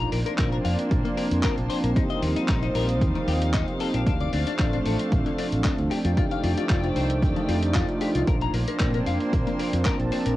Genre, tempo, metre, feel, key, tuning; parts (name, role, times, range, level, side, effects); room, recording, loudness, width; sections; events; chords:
nu-disco, nu disco; 114 BPM; 4/4; straight; A4 = 442 Hz
rich chamber string section; sustained chords; 0.0-10.4 s; Eb3 to G5; -33 LUFS; equal; sidechain pumping, cassette tape
direct-recorded clean electric guitar; riff; 0.0-10.3 s; D3 to Bb5; -32 LUFS; left 11 dB; lush chorus, cassette tape, analog delay
fingered electric bass with an envelope filter; bass; 0.0-10.3 s; F1 to Bb2; -26 LUFS; equal
dusty soul sampler-style drum kit; drums; 0.0-10.4 s; handclaps, hi-hat; -34 LUFS; equal; studio reverb, cassette tape
warm analog pad; accompaniment; 0.2-10.4 s; F3 to A5; -27 LUFS; right 1 dB; chorus, sidechain pumping, cassette tape, analog delay
electronic kick drum; drums; 0.4-10.0 s; -26 LUFS; equal; overdrive, studio reverb, cassette tape
light reverb; home recording on cassette; -22 LUFS; side -16 dB against mid
0.0-10.4 A section
filter sweep on analog synth pad 0.0-10.4
0.0 Bbmaj9; 4.1 Dm7; 5.9 F13; 8.3 Bbmaj9